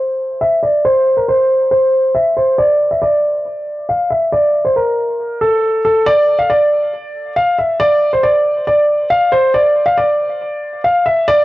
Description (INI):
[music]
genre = hip hop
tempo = 138 BPM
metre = 4/4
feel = half-time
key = D minor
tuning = A4 = 442 Hz
[part]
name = dark baby grand piano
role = solo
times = 0.0-11.4 s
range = A4 to F5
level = -12 LUFS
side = equal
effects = low-pass filter, tape echo
[sound]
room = moderate recital hall reverb, RT60 1.3 s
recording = dry, gritty hardware recording, transformer saturation, cassette tape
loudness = -12 LUFS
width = side -16 dB against mid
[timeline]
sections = 0.0-11.4 A section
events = filter sweep on grand piano 0.0-6.1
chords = none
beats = 0.41 | 0.84 1.28 1.71 2.15 | 2.58 3.02 3.45 3.89 | 4.32 4.76 5.19 5.63 | 6.06 6.50 6.93 7.37 | 7.80 8.24 8.67 9.11 | 9.54 9.97 10.41 10.84 | 11.28